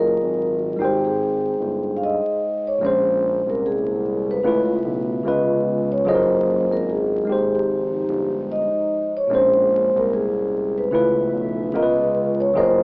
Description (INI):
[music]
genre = lo-fi hip hop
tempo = 74 BPM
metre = 4/4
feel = swing 59% on 16ths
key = unclear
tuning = A4 = 440 Hz
[part]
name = vibraphone with soft mallets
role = melody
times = 0.0-12.8 s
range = G4 to F5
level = -20 LUFS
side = equal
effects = low-pass filter
[part]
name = tine electric piano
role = accompaniment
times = 0.0-12.8 s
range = Bb2 to G5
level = -22 LUFS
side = equal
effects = low-pass filter
[part]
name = smooth gliding synth bass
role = bass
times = 0.0-12.8 s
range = Gb1 to Db2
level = -27 LUFS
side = equal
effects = none
[part]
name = dark analog pad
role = sustained chords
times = 2.8-12.8 s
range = Db3 to E5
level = -33 LUFS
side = equal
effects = chorus, low-pass filter
[sound]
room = moderate plate reverb, RT60 3.4 s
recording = rough home demo mix, vinyl crackle, AM radio sound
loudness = -18 LUFS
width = side -30 dB against mid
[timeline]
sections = 0.0-2.8 A section; 2.8-12.8 A section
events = none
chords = 0.0 Gbmaj13; 0.8 Dbmaj7sus2 (rootless); 2.8 Bbm9; 4.4 Db7alt; 5.2 Db7; 6.1 Gbmaj13; 7.3 Fm9; 9.3 Bbm9; 10.9 Db7alt; 11.7 Db7